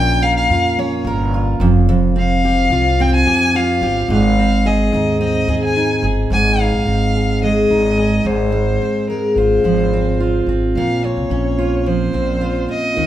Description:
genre	acoustic pop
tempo	108 BPM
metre	4/4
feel	straight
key	Ab major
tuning	A4 = 444 Hz
part	dark violin	melody	0.0-13.1 s	Bb4 to Ab5	-19 LUFS	left 2 dB	none
part	fingerpicked steel-string acoustic guitar	accompaniment	0.0-13.1 s	F2 to Bb4	-16 LUFS	right 1 dB	none
part	upright bass	bass	0.0-13.1 s	F1 to F2	-19 LUFS	equal	none
room	wet large studio reverb, RT60 1.2 s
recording	band playing live in one room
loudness	-14 LUFS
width	side -12 dB against mid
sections	0.0-6.3 A section; 6.3-13.1 B section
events	none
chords	0.0 Bbm; 1.6 Fsus2; 4.1 Ab; 8.3 Fm/Ab; 10.8 Bbmadd9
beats	0.22 0.78 1.33 | 1.88 2.44 2.99 3.54 | 4.10 4.65 5.21 5.76 | 6.32 6.87 7.42 7.98 | 8.53 9.09 9.64 10.20 | 10.75 11.31 11.86 12.42 | 12.97

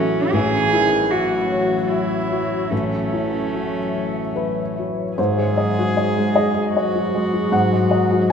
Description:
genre	neoclassical piano and strings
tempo	76 BPM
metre	3/4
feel	rubato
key	unclear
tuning	A4 = 439 Hz
part	dark cello	second line	0.0-8.3 s	D#3 to G#4	-23 LUFS	right 2 dB	none
part	felt-muted upright piano	accompaniment	0.0-8.3 s	A1 to F#5	-20 LUFS	left 1 dB	none
part	rich viola	accompaniment	0.0-8.3 s	D#3 to G#4	-25 LUFS	equal	none
part	deep dark ambient pad	sustained chords	0.0-8.3 s	E3 to E5	-28 LUFS	left 2 dB	chorus, built-in reverb
room	wet concert hall reverb, RT60 2.5 s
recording	minimal, uncompressed stereo recording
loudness	-17 LUFS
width	side -7 dB against mid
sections	0.0-5.2 A section; 5.2-8.3 B section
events	none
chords	0.3 F#m7/A; 5.2 G#7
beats	| 0.33 1.11 1.90 | 2.71 3.52 4.36 | 5.18 5.97 6.75 | 7.53 8.31

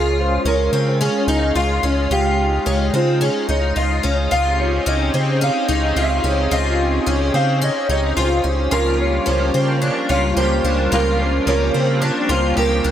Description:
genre	dream pop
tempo	109 BPM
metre	4/4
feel	straight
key	Db lydian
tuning	A4 = 441 Hz
part	mellow electric guitar	melody	0.0-12.9 s	F4 to F5	-22 LUFS	right 2 dB	spring reverb, shimmer reverb, tape echo
part	lush unison pad	sustained chords	0.0-12.9 s	G3 to Ab4	-23 LUFS	equal	chorus, shimmer reverb
part	picked twelve-string acoustic guitar	arpeggios	0.0-12.9 s	C4 to G4	-21 LUFS	left 2 dB	ensemble chorus, shimmer reverb, tape echo
part	round analog bass	bass	0.0-12.9 s	Db2 to Db3	-20 LUFS	equal	none
part	direct-recorded clean electric guitar	accompaniment	8.7-12.9 s	Db3 to G4	-28 LUFS	right 4 dB	tremolo, ensemble chorus, shimmer reverb
room	moderate plate reverb, RT60 3.3 s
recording	none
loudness	-16 LUFS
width	side -10 dB against mid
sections	0.0-12.9 A section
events	none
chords	0.0 Dbadd9; 4.3 Fm7/Db; 8.7 Gm7/Db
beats	0.46 1.01 1.56 | 2.11 2.66 3.21 3.76 | 4.31 4.86 5.41 5.96 | 6.51 7.06 7.61 8.16 | 8.71 9.27 9.82 10.37 | 10.92 11.47 12.02 12.57

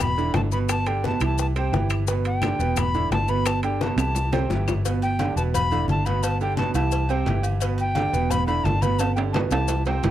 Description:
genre	latin, salsa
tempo	173 BPM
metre	4/4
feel	straight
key	unclear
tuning	A4 = 440 Hz
part	bright reedy jazz flute	melody	0.0-10.1 s	G5 to B5	-27 LUFS	left 2 dB	none
part	bright concert grand piano	accompaniment	0.0-10.1 s	B2 to C5	-27 LUFS	right 8 dB	none
part	vintage muted fingered electric bass	bass	0.0-10.1 s	E1 to C2	-24 LUFS	left 1 dB	none
part	bongos and cowbell	percussion	0.0-10.1 s	none	-33 LUFS	left 9 dB	none
part	claves	percussion	0.0-4.8 s	none	-36 LUFS	left 11 dB	none
part	congas	percussion	0.0-10.1 s	none	-31 LUFS	left 3 dB	none
part	maracas	percussion	0.0-10.1 s	none	-38 LUFS	left 16 dB	none
part	timbales and agogo bells	percussion	0.3-10.1 s	none	-31 LUFS	right 4 dB	none
room	small room ambience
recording	dry, close 1970s-style studio recording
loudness	-20 LUFS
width	side -12 dB against mid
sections	0.0-4.8 A section; 4.8-10.1 A section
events	drum fill 3.5-4.8, 9.0-10.1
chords	0.0 Em7; 0.7 G; 1.4 C; 2.1 Em7; 3.5 G; 4.2 C; 4.8 Em7; 6.2 G; 6.9 C; 7.6 Em7; 9.0 G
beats	0.00 0.34 | 0.69 1.04 1.38 1.73 | 2.08 2.42 2.77 3.12 | 3.46 3.81 4.15 4.50 | 4.85 5.19 5.54 5.88 | 6.23 6.58 6.92 7.27 | 7.62 7.96 8.31 8.65 | 9.00 9.34 9.69 10.03

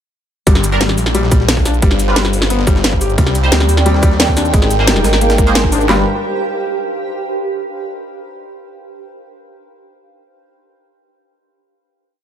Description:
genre	dark technical drum and bass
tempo	177 BPM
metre	4/4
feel	straight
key	G phrygian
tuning	A4 = 440 Hz
part	felt-muted upright piano	arpeggios	0.5-6.0 s	G3 to G4	-20 LUFS	left 4 dB	sidechain pumping, ping-pong delay
part	phased detuned saw bass	bass	0.5-6.0 s	G1 to Eb2	-15 LUFS	equal	phaser, tube saturation
part	drum and bass drum kit	drums	0.5-6.0 s	handclaps, kick drum, snare drum	-13 LUFS	equal	overdrive
part	drum and bass drum kit	drums	0.5-5.9 s	cabasa, hi-hat, snare drum	-17 LUFS	equal	none
part	jungle sampler-style drum kit	drums	0.5-5.8 s	hi-hat, snare drum	-26 LUFS	equal	none
part	granular cloud pad	texture	1.3-7.2 s	D4 to B5	-22 LUFS	right 3 dB	built-in reverb, sidechain pumping
part	band-passed chord stab	stabs	0.7-6.0 s	G3 to C5	-22 LUFS	right 2 dB	phaser, ensemble chorus, cassette tape, ping-pong delay
part	dark analog pad	sustained chords	3.2-6.0 s	G3 to D5	-21 LUFS	right 2 dB	chorus, sidechain pumping
room	digital ambience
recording	none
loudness	-11 LUFS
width	side -10 dB against mid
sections	0.5-5.9 drop; 5.9-7.2 final chord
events	drop 0.5-5.9; band accent 5.6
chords	0.5 Gm; 1.8 G7; 3.2 Cm; 4.5 Abadd9; 5.9 G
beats	| 0.47 0.81 1.15 1.49 | 1.82 2.16 2.50 2.84 | 3.18 3.52 3.86 4.20 | 4.54 4.88 5.21 5.55 | 5.89 6.23 6.57 6.91

